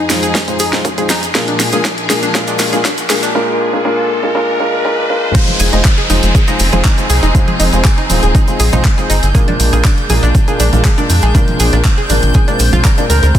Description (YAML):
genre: progressive house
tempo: 120 BPM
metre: 4/4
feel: straight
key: unclear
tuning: A4 = 440 Hz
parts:
  - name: rich studio string section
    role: sustained chords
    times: 0.0-13.4 s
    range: F2 to Ab4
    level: -20 LUFS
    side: left 1 dB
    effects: sidechain pumping
  - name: analog pluck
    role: arpeggios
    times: 0.0-13.3 s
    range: D4 to Bb5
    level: -21 LUFS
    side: equal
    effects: chorus, cassette tape, sidechain pumping, dub echo
  - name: riser and downlifter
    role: sound effects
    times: 0.9-9.3 s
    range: none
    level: -22 LUFS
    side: equal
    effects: none
  - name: dark baby grand piano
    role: stabs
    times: 0.1-13.4 s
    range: Ab2 to C5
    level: -18 LUFS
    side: left 1 dB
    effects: sidechain pumping, low-pass filter, dub echo
  - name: deep house drum kit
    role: drums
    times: 0.1-13.4 s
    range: crash cymbal, handclaps, hi-hat, snare drum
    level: -19 LUFS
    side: equal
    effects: sidechain pumping on hats, high-pass filter on hats, small room ambience, soft clipping on snare, high-pass filter on snare, sidechain pumping on cymbals, high-pass filter on cymbals
  - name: cabasa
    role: percussion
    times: 0.1-13.4 s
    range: none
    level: -25 LUFS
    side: right 6 dB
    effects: none
  - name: electronic kick drum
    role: drums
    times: 0.3-13.4 s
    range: none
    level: -12 LUFS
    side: equal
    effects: high-pass filter on kick, small room ambience, high-pass filter on room
  - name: backwards swelling texture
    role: texture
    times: 6.2-13.4 s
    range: G6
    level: -25 LUFS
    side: right 2 dB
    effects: built-in reverb, sidechain pumping
  - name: congas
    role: percussion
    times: 5.5-12.8 s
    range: none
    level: -22 LUFS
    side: right 3 dB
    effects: sidechain pumping on perc
  - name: tight sequencer bass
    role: bass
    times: 5.6-13.3 s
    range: Eb1 to F2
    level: -12 LUFS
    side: equal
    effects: sidechain pumping
room: light reverb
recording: dense, heavily limited modern master, high-pass filter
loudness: -10 LUFS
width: side -11 dB against mid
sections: 0.0-5.3 A section; 5.3-13.4 B section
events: build-up 0.0-5.3; drum fill 0.0-3.3; filter sweep on grand piano 0.0-5.3; filter sweep 0.0-5.3; riser 0.9-5.3; drop 5.3-13.4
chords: 0.0 Fm7; 1.3 Bb7; 5.3 Fm7; 9.3 Bb7